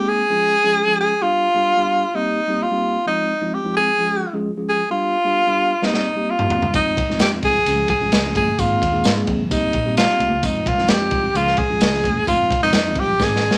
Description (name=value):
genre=uptempo 1960s-style soul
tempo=130 BPM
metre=4/4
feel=straight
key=unclear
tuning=A4 = 441 Hz
part: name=breathy tenor saxophone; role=melody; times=0.0-13.6 s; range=Eb4 to Ab4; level=-20 LUFS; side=equal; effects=none
part: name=mellow tine electric piano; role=accompaniment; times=0.0-13.6 s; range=Eb3 to Ab4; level=-27 LUFS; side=equal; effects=none
part: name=crunchy breakbeat drum kit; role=drums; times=5.8-13.6 s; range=kick drum, ride cymbal, snare drum, toms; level=-24 LUFS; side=equal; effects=none
part: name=vintage muted fingered electric bass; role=bass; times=6.7-13.6 s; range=Fb1 to Ab2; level=-30 LUFS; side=equal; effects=none
part: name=congas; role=percussion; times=6.7-13.3 s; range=none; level=-32 LUFS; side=equal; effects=none
part: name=tambourine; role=percussion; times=6.7-13.3 s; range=none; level=-36 LUFS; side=equal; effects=none
room=moderate studio reverb, RT60 0.5 s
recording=none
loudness=-19 LUFS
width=mono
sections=0.0-13.6 A section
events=drum fill 5.8-6.7, 13.2-13.6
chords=0.3 Db; 1.2 G7; 2.1 Cm7; 3.1 Fm7; 4.0 Db; 4.9 G7; 5.8 Cm7; 6.7 Fm7; 7.7 Db; 8.6 Abadd9; 9.5 Cm7; 10.4 Fm7; 11.4 Db; 12.3 Fm7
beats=0.30 0.76 | 1.22 1.68 2.14 2.60 | 3.06 3.52 3.98 4.44 | 4.90 5.36 5.82 6.28 | 6.74 7.20 7.67 8.13 | 8.59 9.05 9.51 9.97 | 10.43 10.89 11.36 11.82 | 12.28 12.74 13.20